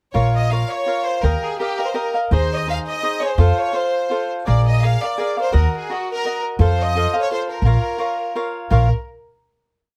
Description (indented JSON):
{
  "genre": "mexican folk, mariachi",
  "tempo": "168 BPM",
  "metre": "3/4",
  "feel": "swing 53% on 8ths, rubato",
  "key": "Bb minor",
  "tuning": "A4 = 440 Hz",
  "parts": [
    { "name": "clear studio violin section", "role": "melody", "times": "0.1-8.9 s", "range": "Gb4 to F5", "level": "-26 LUFS", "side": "equal", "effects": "none" },
    { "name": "cavaquinho", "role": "accompaniment", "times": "0.1-8.9 s", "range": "Eb4 to Gb5", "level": "-25 LUFS", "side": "equal", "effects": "none" },
    { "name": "upright bass", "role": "bass", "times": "0.1-8.9 s", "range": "Bb1 to F2", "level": "-18 LUFS", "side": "equal", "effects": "none" }
  ],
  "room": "light reverb",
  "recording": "close, detailed microphones",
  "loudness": "-20 LUFS",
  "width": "mono",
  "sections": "0.1-8.7 A section; 8.7-9.8 final chord",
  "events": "none",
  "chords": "0.1 Bbm; 1.2 Ebadd9; 2.3 Ab/Eb; 3.4 F; 4.5 Bb7; 5.5 Ebm; 6.6 F; 7.6 Bbm"
}